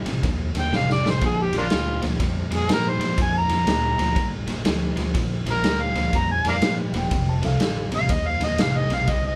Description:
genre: electric blues shuffle.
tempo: 122 BPM.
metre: 4/4.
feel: swing 64% on 8ths.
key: F mixolydian.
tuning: A4 = 440 Hz.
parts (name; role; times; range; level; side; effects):
warm upright piano; second line; 0.0-0.2, 6.9-7.9 s; F4 to A5; -34 LUFS; equal; none.
overdriven electric guitar; riff; 0.0-9.4 s; F2 to G3; -29 LUFS; equal; none.
fingered electric bass; bass; 0.0-9.4 s; E1 to Ab2; -30 LUFS; equal; none.
raw garage drum kit; drums; 0.1-9.2 s; kick drum, ride cymbal, snare drum; -27 LUFS; equal; none.
overdriven harmonica; melody; 0.6-9.4 s; Bb3 to Bb5; -26 LUFS; equal; none.
room: light reverb.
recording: band playing live in one room.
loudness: -22 LUFS.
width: mono.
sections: 0.0-9.4 A section.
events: drum fill 0.7-1.2.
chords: 0.0 F7; 1.2 Bb7; 7.1 F7.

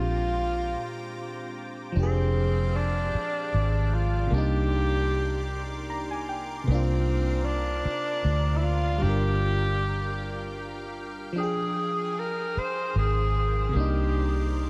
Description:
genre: slow six-eight R&B.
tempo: 51 BPM (dotted quarters).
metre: 6/8.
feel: straight.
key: F dorian.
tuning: A4 = 440 Hz.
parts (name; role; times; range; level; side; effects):
breathy tenor saxophone; melody; 0.0-14.6 s; C4 to C5; -32 LUFS; equal; tape echo.
FM electric piano; accompaniment; 0.0-14.7 s; Bb2 to Bb5; -35 LUFS; equal; chorus.
lush unison pad; sustained chords; 0.0-14.7 s; Ab3 to D6; -43 LUFS; equal; chorus.
vintage muted fingered electric bass; bass; 0.0-14.7 s; F1 to D2; -28 LUFS; equal; none.
room: moderate huge ambient reverb, RT60 7.7 s.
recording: dreamy mix soaked in reverb.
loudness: -27 LUFS.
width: mono.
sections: 0.0-2.0 A section; 2.0-14.7 B section.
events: break 0.8-2.0; FM electric piano fill 5.5-6.7.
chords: 0.0 Bb13; 2.0 Fm69; 4.3 Cm9; 6.7 C9sus4; 9.0 Gm7; 11.4 Fm69; 13.7 Cm9.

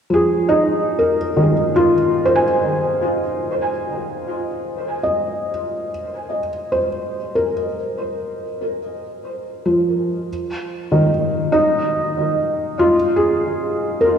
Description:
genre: ambient.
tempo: 71 BPM.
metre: 4/4.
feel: straight.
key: unclear.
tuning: A4 = 438 Hz.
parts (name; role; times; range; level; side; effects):
felt-muted upright piano; solo; 0.1-14.2 s; Eb3 to Ab5; -17 LUFS; equal; diffuse ambient delay.
room: wet lush hall reverb, RT60 3.1 s.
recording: dreamy mix soaked in reverb, cassette tape.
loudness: -17 LUFS.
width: side -8 dB against mid.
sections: 0.0-14.2 A section.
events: none.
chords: 0.0 Eb5.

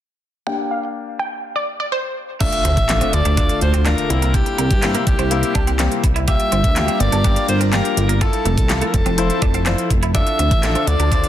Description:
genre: dance-pop.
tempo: 124 BPM.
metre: 4/4.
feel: straight.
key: G dorian.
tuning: A4 = 441 Hz.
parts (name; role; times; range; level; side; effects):
wide unison pluck; melody; 0.5-2.3 s; C5 to G5; -23 LUFS; right 1 dB; sidechain pumping, low-pass filter, dub echo.
clear baby grand piano; accompaniment; 0.5-11.3 s; A3 to C5; -25 LUFS; left 6 dB; sidechain pumping, low-pass filter.
bright alto saxophone; melody; 2.4-11.3 s; G4 to E5; -23 LUFS; equal; dub echo.
airy breathy pad; sustained chords; 2.9-11.3 s; C3 to Bb4; -26 LUFS; equal; chorus, sidechain pumping.
twelve-string electric guitar; riff; 2.4-11.3 s; A3 to G4; -27 LUFS; right 5 dB; analog chorus.
pop drum kit; drums; 2.4-11.3 s; crash cymbal, handclaps, hi-hat, kick drum, snare drum; -19 LUFS; equal; none.
impact; sound effects; 2.4-4.3 s; none; -29 LUFS; equal; none.
chorused synth bass; bass; 2.6-11.2 s; F1 to G2; -18 LUFS; equal; sidechain pumping.
room: light reverb.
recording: dense, heavily limited modern master.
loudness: -15 LUFS.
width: side -11 dB against mid.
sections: 0.5-2.4 A section; 2.4-11.3 B section.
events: filter sweep 0.5-2.4; impact 2.4-4.3.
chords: 0.5 Gm; 2.4 Dm; 4.1 C7; 6.3 Gm7; 8.2 Fmaj7; 10.1 Dm.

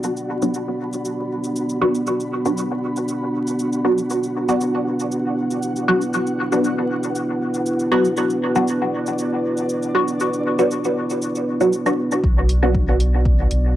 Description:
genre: dub techno.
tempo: 118 BPM.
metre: 4/4.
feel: straight.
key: B minor.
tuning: A4 = 443 Hz.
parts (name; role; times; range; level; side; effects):
dark analog pad; sustained chords; 0.0-13.8 s; B3 to D5; -23 LUFS; right 1 dB; chorus, sidechain pumping, cassette tape.
electronic shaker and hi-hat; drums; 0.0-13.6 s; none; -34 LUFS; equal; overdrive.
flickering grainy texture; texture; 0.0-12.3 s; F#4 to B5; -31 LUFS; equal; built-in reverb, sidechain pumping, cassette tape.
filtered dub chord stab; stabs; 0.4-12.9 s; F#3 to F#4; -21 LUFS; equal; phaser, sidechain pumping, cassette tape, dub echo.
warm sub bass; bass; 12.2-13.8 s; B1; -17 LUFS; equal; sidechain pumping.
electronic kick drum; drums; 12.2-13.4 s; none; -20 LUFS; equal; overdrive.
room: wet studio reverb, RT60 0.6 s.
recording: home recording on cassette, vinyl crackle.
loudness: -18 LUFS.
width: side -13 dB against mid.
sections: 0.0-12.2 A section; 12.2-13.8 B section.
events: filter sweep on analog synth pad 0.0-12.2.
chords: 0.0 Bm.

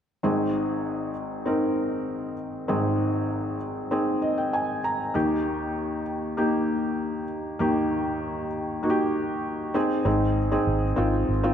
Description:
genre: pop.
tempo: 98 BPM.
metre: 4/4.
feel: straight.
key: Ab major.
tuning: A4 = 439 Hz.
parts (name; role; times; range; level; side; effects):
felt-muted upright piano; accompaniment; 0.2-11.5 s; Ab1 to Bb5; -24 LUFS; equal; none.
vintage muted fingered electric bass; bass; 10.1-11.5 s; Ab1; -25 LUFS; right 1 dB; none.
room: wet concert hall reverb, RT60 1.9 s, small room ambience.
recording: none.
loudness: -24 LUFS.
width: side -8 dB against mid.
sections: 0.2-10.1 A section; 10.1-11.5 B section.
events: felt piano fill 3.9-5.1.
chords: 0.2 Ab; 5.1 Eb; 9.7 Ab.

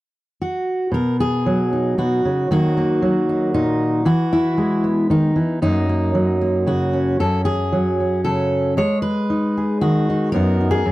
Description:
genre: folk, solo fingerstyle acoustic guitar.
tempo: 115 BPM.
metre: 3/4.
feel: straight.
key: B major.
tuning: A4 = 440 Hz.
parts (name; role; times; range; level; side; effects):
fingerpicked steel-string acoustic guitar; solo; 0.4-10.9 s; F#2 to C#5; -16 LUFS; equal; none.
room: little or no reverb.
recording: dry, close 1970s-style studio recording.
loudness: -16 LUFS.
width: side -17 dB against mid.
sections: 0.9-10.9 A section.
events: none.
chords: 0.0 N.C.; 0.9 B; 2.5 D#m; 4.1 E; 5.6 F#; 7.2 F#m; 8.8 G#m; 10.3 B/F#.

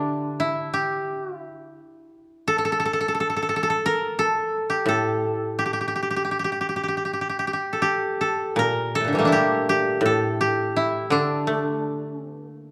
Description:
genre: japanese traditional, Japanese chamber music.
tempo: 73-88 BPM.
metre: 4/4.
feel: rubato.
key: G kumoi.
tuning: A4 = 440 Hz.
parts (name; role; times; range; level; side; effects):
koto; melody; 0.0-12.7 s; A2 to Bb4; -24 LUFS; equal; none.
koto; accompaniment; 0.0-12.7 s; A2 to A3; -29 LUFS; equal; none.
room: moderate concert hall reverb, RT60 1.8 s.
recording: dark, warm production.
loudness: -24 LUFS.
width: mono.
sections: 0.0-8.6 A section; 8.6-12.7 B section.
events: none.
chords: none.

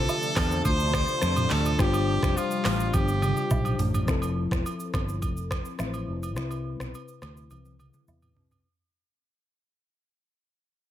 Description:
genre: afrobeats.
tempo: 105 BPM.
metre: 4/4.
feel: straight.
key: unclear.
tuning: A4 = 443 Hz.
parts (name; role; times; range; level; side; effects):
brilliant trumpet; melody; 0.0-3.8 s; F4 to C5; -29 LUFS; equal; ping-pong delay.
bell-like tine electric piano; accompaniment; 0.0-8.7 s; C3 to C5; -32 LUFS; left 5 dB; phaser, low-pass filter.
warm analog pad; sustained chords; 0.0-4.1 s; C3 to D4; -35 LUFS; right 1 dB; chorus.
fingered electric bass; bass; 0.0-8.6 s; E1 to F2; -28 LUFS; equal; none.
afro-pop drum kit; drums; 0.1-8.6 s; finger snaps, handclaps, hi-hat, kick drum, rim click, shaker, toms; -29 LUFS; equal; none.
agogo bells and woodblock; percussion; 0.1-8.6 s; none; -38 LUFS; right 6 dB; none.
room: little or no reverb.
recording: none.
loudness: -24 LUFS.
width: side -12 dB against mid.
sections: 0.0-4.1 A section; 4.1-8.7 B section.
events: drum fill 2.9-4.1, 7.5-8.7; fade-out 4.1-8.7; filter sweep on tine electric piano 4.1-8.7.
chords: 0.0 Dm7; 1.8 G7sus4; 4.1 Fmaj7; 6.4 Cmaj7.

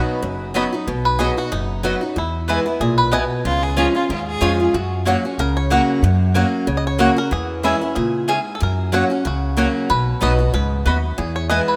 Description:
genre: bluegrass.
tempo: 186 BPM.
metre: 4/4.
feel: swing 55% on 8ths.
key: B major.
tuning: A4 = 439 Hz.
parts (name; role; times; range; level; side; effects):
mandolin; melody; 0.0-0.5 s; B4; -40 LUFS; equal; none.
picked old ladder-braced acoustic guitar; accompaniment; 0.0-11.8 s; E2 to F#4; -23 LUFS; equal; none.
upright bass; bass; 0.2-11.6 s; F#1 to C#3; -24 LUFS; equal; none.
mandolin; stabs; 0.5-11.6 s; A#3 to B5; -26 LUFS; equal; none.
bluegrass banjo; melody; 0.6-11.8 s; B3 to D#5; -27 LUFS; equal; none.
clear fiddle; second line; 3.4-4.6 s; E#4 to G#4; -27 LUFS; equal; none.
room: moderate lush hall reverb, RT60 3.3 s.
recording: rough home demo mix.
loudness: -19 LUFS.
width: mono.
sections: 0.9-11.8 A section.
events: five-string banjo solo 0.9-11.8.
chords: 0.0 B; 2.2 E; 3.5 C#; 4.7 F#; 7.3 C#m/E; 8.6 F#; 9.9 B; 11.2 E.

